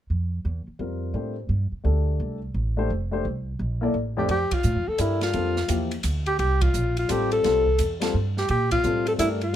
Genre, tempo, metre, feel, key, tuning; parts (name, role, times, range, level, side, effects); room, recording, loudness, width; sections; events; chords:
modal jazz; 172 BPM; 3/4; swing 65% on 8ths; F major; A4 = 439 Hz
upright bass; bass; 0.1-9.5 s; F1 to Bb2; -26 LUFS; right 1 dB
warm grand piano; accompaniment; 0.8-9.6 s; F2 to D5; -28 LUFS; left 4 dB
mellow alto saxophone; melody; 4.2-9.6 s; E4 to A4; -24 LUFS; left 1 dB
open jazz drum kit; drums; 4.3-9.5 s; hi-hat, kick drum, ride cymbal, snare drum; -31 LUFS; right 2 dB
light reverb; -22 LUFS; side -11 dB against mid
0.1-4.3 A section; 4.3-9.6 B section
band accent 4.5, 6.6, 8.7
0.1 Fadd9; 4.3 Fmaj9; 8.5 Bbmaj9